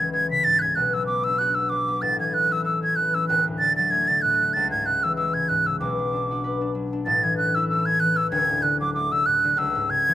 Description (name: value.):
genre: celtic folk, Celtic reel.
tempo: 190 BPM.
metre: 4/4.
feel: swing 56% on 8ths.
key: unclear.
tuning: A4 = 440 Hz.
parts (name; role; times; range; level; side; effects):
silver concert flute; melody; 0.0-10.1 s; D6 to B6; -21 LUFS; right 1 dB; slapback echo.
concert harp; accompaniment; 0.0-10.1 s; D1 to B4; -27 LUFS; left 2 dB; none.
room: little or no reverb.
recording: recorded outdoors, with no room sound.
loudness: -20 LUFS.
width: side -13 dB against mid.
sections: 0.0-7.1 A section; 7.1-10.1 A section.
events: none.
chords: 0.0 C#m; 0.8 Bm; 2.0 A; 3.3 D; 4.5 C#m; 5.8 Bm; 7.1 A; 8.3 D; 9.6 C#m.